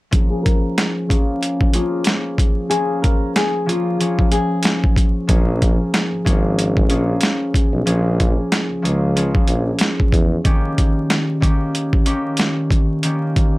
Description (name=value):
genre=hip hop, boom-bap hip-hop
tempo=93 BPM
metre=4/4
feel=swing 56% on 16ths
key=Bb dorian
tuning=A4 = 440 Hz
part: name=concert harp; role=accompaniment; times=0.1-13.6 s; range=Eb3 to Ab4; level=-20 LUFS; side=equal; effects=cassette tape, high-pass filter, low-pass filter
part: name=boom bap sampler-style drum kit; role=drums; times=0.1-13.5 s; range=hi-hat, kick drum, snare drum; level=-17 LUFS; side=equal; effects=overdrive
part: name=flamenco guitar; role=melody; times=0.3-5.2 s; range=F4 to Bb4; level=-22 LUFS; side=left 4 dB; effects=high-pass filter, low-pass filter
part: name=warm tuba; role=bass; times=5.3-10.4 s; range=Ab1 to E2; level=-20 LUFS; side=equal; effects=none
room=little or no reverb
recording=dry, gritty hardware recording, vinyl crackle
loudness=-15 LUFS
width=side -20 dB against mid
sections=0.1-5.3 A section; 5.3-13.6 B section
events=filter sweep 0.1-5.3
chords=0.1 Bbm7; 10.4 Eb7